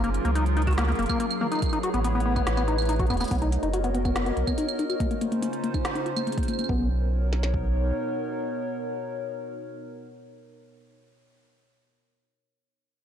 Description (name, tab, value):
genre	IDM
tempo	142 BPM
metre	4/4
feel	straight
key	B lydian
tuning	A4 = 440 Hz
part	warbly tape-like pad	sustained chords	0.0-10.8 s	B2 to D#5	-31 LUFS	equal	chorus, built-in reverb
part	deep acid bass	arpeggios	0.0-6.9 s	A#3 to F#4	-28 LUFS	left 3 dB	ping-pong delay
part	warm sub bass	bass	0.0-7.9 s	E1 to C#2	-26 LUFS	right 1 dB	none
part	organic electronic drum kit	drums	0.0-6.7 s	claves, hi-hat, shaker, snare drum, toms	-33 LUFS	right 1 dB	none
part	glitchy drum kit	drums	0.7-7.6 s	kick drum, snare drum	-29 LUFS	right 1 dB	none
room	light reverb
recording	blown-out, overdriven recording, overdrive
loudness	-24 LUFS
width	side -9 dB against mid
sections	0.0-3.3 A section; 3.3-6.7 B section; 6.7-10.1 C section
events	drum fill 3.0-3.3; filter sweep on acid bass 3.3-6.7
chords	0.0 F#maj9; 1.6 Amaj9; 3.3 Bmaj9; 5.0 C#maj9; 6.7 Bmaj9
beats	0.35 0.78 1.20 | 1.62 2.04 2.47 2.89 | 3.31 3.73 4.16 4.58 | 5.00 5.42 5.85 6.27 | 6.69 7.12 7.54 7.96 | 8.38 8.80 9.23 9.65